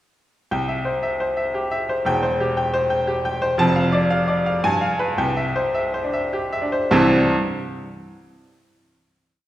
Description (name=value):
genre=classical, virtuoso piano study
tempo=102-119 BPM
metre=3/4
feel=rubato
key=C major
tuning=A4 = 440 Hz
part: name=bright baby grand piano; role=solo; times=0.5-7.3 s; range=E1 to A5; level=-18 LUFS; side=equal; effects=none
room=wet recital hall reverb, RT60 1.8 s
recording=heard from further back in the room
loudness=-18 LUFS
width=side -13 dB against mid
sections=0.5-6.9 A section; 6.9-8.6 final chord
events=slowing down 2.8-6.9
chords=0.5 C; 2.1 C/E; 3.6 Dm/F; 4.6 G7b9; 5.2 C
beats=| 0.52 1.03 1.55 | 2.07 2.58 3.09 | 3.60 4.11 4.64 | 5.19 5.76 6.33 | 6.91